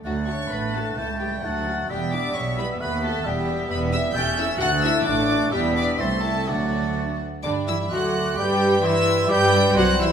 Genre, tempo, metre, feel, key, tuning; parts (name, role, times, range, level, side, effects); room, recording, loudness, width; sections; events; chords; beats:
quick classical-period movement for symphony orchestra; 130 BPM; 2/4; rubato; D major, G major from 3.7 s; A4 = 441 Hz
warm chamber violin section; melody; 0.0-10.1 s; F#5 to G6; -28 LUFS; equal
mellow silver concert flute; second line; 0.0-10.1 s; B5 to B6; -32 LUFS; left 1 dB
warm clarinet; second line; 0.0-10.1 s; B3 to G4; -32 LUFS; left 1 dB
warm oboe; second line; 0.0-10.1 s; C5 to G5; -32 LUFS; left 2 dB
dark studio viola section; accompaniment; 0.0-10.1 s; G3 to A4; -29 LUFS; right 1 dB
warm bassoon; accompaniment; 0.0-10.1 s; G3 to A3; -30 LUFS; right 3 dB
dark studio double bass section; bass; 0.0-10.1 s; E1 to G2; -29 LUFS; right 2 dB
warm studio cello section; bass; 0.0-10.1 s; C2 to G3; -28 LUFS; right 2 dB
warm chamber violin section; second line; 0.1-10.1 s; F#4 to G5; -31 LUFS; equal
warm French horn section; sustained chords; 0.1-10.1 s; F#3 to C5; -27 LUFS; left 2 dB
dark trumpet section; stabs; 7.4-10.1 s; D5 to G5; -29 LUFS; equal
wet recital hall reverb, RT60 1.5 s; minimal, uncompressed stereo recording; -20 LUFS; side -8 dB against mid
0.0-7.4 A section; 7.4-10.1 B section
0.0 D; 1.0 A7/C#; 1.4 D; 1.9 Em; 2.8 B7/D#; 3.3 Em; 4.2 A7/E; 4.6 D; 5.5 Em; 6.0 Am/C; 6.5 D; 7.4 G; 7.9 D7; 8.4 G; 8.8 C/G; 9.3 G
| 0.05 0.52 | 0.98 1.44 | 1.90 2.35 | 2.81 3.25 | 3.70 4.16 | 4.61 5.06 | 5.53 6.00 | 6.48 6.97 | 7.45 7.92 | 8.38 8.85 | 9.31 9.77